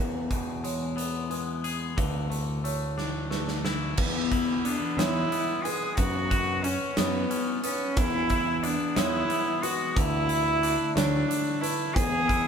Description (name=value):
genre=post-rock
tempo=60 BPM (dotted quarters)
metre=6/8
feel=straight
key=E mixolydian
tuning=A4 = 440 Hz
part: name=dark analog pad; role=sustained chords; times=0.5-12.5 s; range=D3 to B4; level=-38 LUFS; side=equal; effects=chorus
part: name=felt-muted upright piano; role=arpeggios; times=0.0-12.5 s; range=B4 to C#5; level=-38 LUFS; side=right 8 dB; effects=tape echo
part: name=twangy electric guitar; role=arpeggios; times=0.0-12.5 s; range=E2 to G#4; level=-34 LUFS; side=left 5 dB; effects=spring reverb
part: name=growling fingered electric bass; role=bass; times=0.0-12.5 s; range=D2 to F#2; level=-31 LUFS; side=left 1 dB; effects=overdrive
part: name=big rock drum kit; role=drums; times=0.3-12.5 s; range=crash cymbal, hi-hat, kick drum, snare drum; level=-30 LUFS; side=equal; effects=none
part: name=rich cello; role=melody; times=4.0-12.5 s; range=B3 to G#4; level=-28 LUFS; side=equal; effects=none
room=wet small room reverb, RT60 0.6 s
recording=band playing live in one room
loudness=-25 LUFS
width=side -7 dB against mid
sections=0.0-4.0 A section; 4.0-12.5 B section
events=drum fill 3.0-4.0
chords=0.0 E; 2.0 Dsus2; 4.0 E; 6.0 F#sus4; 8.0 E; 10.0 Dsus2; 12.0 E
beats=0.98 | 1.98 2.98 | 3.98 4.98 | 5.98 6.98 | 7.97 8.97 | 9.97 10.96 | 11.96